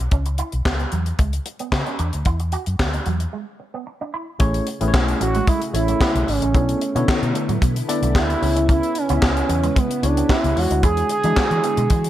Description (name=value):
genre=early-eighties boogie funk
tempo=112 BPM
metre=4/4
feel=straight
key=unclear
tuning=A4 = 440 Hz
part: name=vintage muted fingered electric bass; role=bass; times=0.0-12.1 s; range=G#1 to E3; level=-22 LUFS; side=equal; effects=none
part: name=electric guitar with an envelope filter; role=riff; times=0.1-12.0 s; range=F#3 to F#4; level=-30 LUFS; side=right 7 dB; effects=analog chorus
part: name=tight funk drum kit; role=drums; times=0.1-12.1 s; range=handclaps, hi-hat, kick drum, snare drum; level=-21 LUFS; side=equal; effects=gated reverb
part: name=tine electric piano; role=accompaniment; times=4.4-11.8 s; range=D3 to E5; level=-25 LUFS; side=left 3 dB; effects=lush chorus
part: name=soft string machine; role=sustained chords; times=4.7-12.1 s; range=C#3 to C#5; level=-31 LUFS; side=left 1 dB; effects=ensemble chorus
part: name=expressive synth lead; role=melody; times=5.2-12.1 s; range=B3 to G#4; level=-22 LUFS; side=right 3 dB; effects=chorus
room=little or no reverb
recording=none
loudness=-17 LUFS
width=side -13 dB against mid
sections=0.0-4.4 A section; 4.4-12.1 B section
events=break 3.3-4.4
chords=0.0 C#m7; 2.0 E7sus2; 4.4 Amaj7; 6.5 Bm11; 8.4 C#m7; 10.6 E13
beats=| 0.12 0.65 1.19 1.72 | 2.26 2.79 3.33 3.87 | 4.40 4.94 5.47 6.01 | 6.54 7.08 7.62 8.15 | 8.69 9.22 9.76 10.29 | 10.83 11.37 11.90